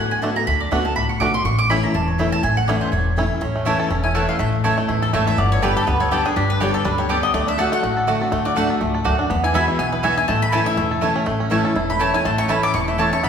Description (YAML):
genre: bluegrass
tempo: 244 BPM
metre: 4/4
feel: swing 55% on 8ths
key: A major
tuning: A4 = 440 Hz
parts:
  - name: picked steel-string acoustic guitar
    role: accompaniment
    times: 0.0-13.3 s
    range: E2 to G4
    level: -24 LUFS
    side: left 2 dB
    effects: none
  - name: mandolin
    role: stabs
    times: 0.0-13.1 s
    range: A3 to D6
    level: -23 LUFS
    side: right 3 dB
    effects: none
  - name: upright bass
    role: bass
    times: 0.0-13.3 s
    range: E1 to E2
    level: -24 LUFS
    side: left 1 dB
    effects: none
  - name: bluegrass banjo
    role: arpeggios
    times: 0.2-13.3 s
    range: A3 to A4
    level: -24 LUFS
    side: right 2 dB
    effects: none
  - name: mandolin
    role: melody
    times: 4.0-13.3 s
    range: G4 to D6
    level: -23 LUFS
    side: left 2 dB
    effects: none
room: wet recital hall reverb, RT60 1.7 s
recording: recorded in a church or concert hall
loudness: -17 LUFS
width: side -7 dB against mid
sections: 0.0-3.4 A section; 3.4-11.3 A section; 11.3-13.3 A section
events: mandolin solo 0.0-3.4, 3.4-13.3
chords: 0.0 D6; 1.5 A; 5.4 G; 7.3 D; 9.3 Eadd9; 10.3 A